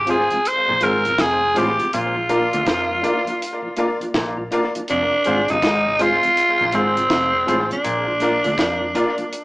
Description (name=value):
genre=roots reggae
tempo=81 BPM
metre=4/4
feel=swing 63% on 16ths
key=F dorian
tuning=A4 = 440 Hz
part: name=growling tenor saxophone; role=melody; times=0.0-9.4 s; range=C4 to C5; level=-18 LUFS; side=equal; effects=none
part: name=vintage muted fingered electric bass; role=bass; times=0.0-8.9 s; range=F1 to F2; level=-32 LUFS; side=equal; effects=none
part: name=mellow electric guitar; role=accompaniment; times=0.1-9.2 s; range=Ab3 to F4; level=-27 LUFS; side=right 1 dB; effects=none
part: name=mellow tonewheel organ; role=accompaniment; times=0.1-9.2 s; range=F2 to F4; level=-29 LUFS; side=equal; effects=slow rotary speaker, analog delay
part: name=clear grand piano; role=stabs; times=0.1-9.1 s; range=F4 to F5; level=-25 LUFS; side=left 1 dB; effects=analog delay
part: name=deep reggae drum kit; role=drums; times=0.1-9.4 s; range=hi-hat, kick drum, snare drum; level=-25 LUFS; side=equal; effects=analog delay
part: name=overdriven clav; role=riff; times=0.7-8.8 s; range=F2 to F3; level=-27 LUFS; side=left 1 dB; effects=none
room=wet studio reverb, RT60 0.5 s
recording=band playing live in one room, small speaker sound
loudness=-16 LUFS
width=side -22 dB against mid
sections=0.0-9.4 A section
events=none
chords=0.0 Fm; 1.9 Bb; 4.9 Fm; 7.8 Bb